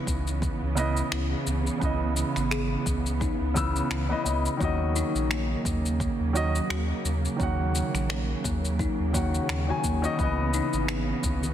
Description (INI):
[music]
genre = sunset chillout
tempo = 86 BPM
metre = 4/4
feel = swing 56% on 16ths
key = C# dorian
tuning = A4 = 440 Hz
[part]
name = warm grand piano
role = accompaniment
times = 0.0-11.5 s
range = C#3 to E6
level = -30 LUFS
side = moving between left 4 dB and right 5 dB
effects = auto-pan, ping-pong delay
[part]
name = dark studio string section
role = sustained chords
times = 0.0-11.5 s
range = C#3 to B3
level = -32 LUFS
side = right 3 dB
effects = stereo widening
[part]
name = warm sub bass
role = bass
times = 0.1-11.5 s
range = G#1 to D#2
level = -29 LUFS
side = equal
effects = none
[part]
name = electronic kick drum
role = drums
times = 0.1-11.4 s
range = none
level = -31 LUFS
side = equal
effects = overdrive
[part]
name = electronic shaker and finger snaps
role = drums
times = 0.1-11.5 s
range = none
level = -34 LUFS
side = left 1 dB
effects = overdrive, soft clipping on snare
[part]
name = kalimba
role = arpeggios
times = 1.1-11.1 s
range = A#3 to A#4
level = -36 LUFS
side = left 4 dB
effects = ping-pong delay
[part]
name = congas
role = percussion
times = 11.2-11.5 s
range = none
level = -35 LUFS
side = left 2 dB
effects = none
[sound]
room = moderate scoring stage reverb, RT60 1.6 s, small room ambience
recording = dense, heavily limited modern master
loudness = -24 LUFS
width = side -10 dB against mid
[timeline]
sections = 0.0-11.5 A section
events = none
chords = 0.0 C#m9; 4.6 D#m7; 10.2 C#m9